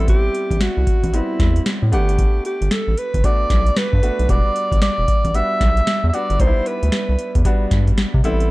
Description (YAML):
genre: R&B, new jack swing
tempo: 114 BPM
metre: 4/4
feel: swing 63% on 16ths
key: unclear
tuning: A4 = 440 Hz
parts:
  - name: mellow alto saxophone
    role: melody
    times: 0.0-8.5 s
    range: E4 to E5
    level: -22 LUFS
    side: right 1 dB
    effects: none
  - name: clear baby grand piano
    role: accompaniment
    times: 0.0-8.5 s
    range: G3 to F#5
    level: -27 LUFS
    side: left 1 dB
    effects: none
  - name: round analog bass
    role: bass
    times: 0.0-8.5 s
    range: E1 to C3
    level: -18 LUFS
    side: equal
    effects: none
  - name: booming analog drum machine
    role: drums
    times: 0.1-8.5 s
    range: hi-hat, kick drum, snare drum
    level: -18 LUFS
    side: equal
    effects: overdrive, vintage 12-bit sampler grit
room: little or no reverb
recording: dark, warm production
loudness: -15 LUFS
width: side -20 dB against mid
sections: 0.0-8.5 A section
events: none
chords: 0.0 Am7; 1.9 Gmaj7; 4.3 Em9; 6.4 Cmaj7